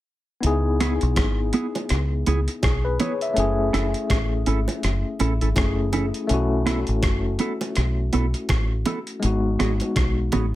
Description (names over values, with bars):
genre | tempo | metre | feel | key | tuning
lovers rock reggae | 82 BPM | 4/4 | swing 58% on 16ths | C# minor | A4 = 440 Hz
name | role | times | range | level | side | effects
overdriven tine electric piano | accompaniment | 0.4-10.6 s | G#3 to E5 | -26 LUFS | left 3 dB | medium tremolo, tape echo
deep dub fingered electric bass | bass | 0.4-10.5 s | F#1 to C#2 | -23 LUFS | equal | none
dusty soul sampler-style drum kit | drums | 0.4-10.5 s | hi-hat, kick drum, rim click | -25 LUFS | equal | overdrive, gated reverb
mellow electric guitar | stabs | 0.8-10.4 s | B3 to A4 | -24 LUFS | right 4 dB | wide subtle chorus
bongos | percussion | 1.2-10.5 s | none | -32 LUFS | right 4 dB | none
room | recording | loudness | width
light reverb | none | -20 LUFS | side -15 dB against mid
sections
0.4-10.6 A section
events
none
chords
0.4 C#m7; 3.4 F#m7; 6.3 B7sus4; 9.2 G#m7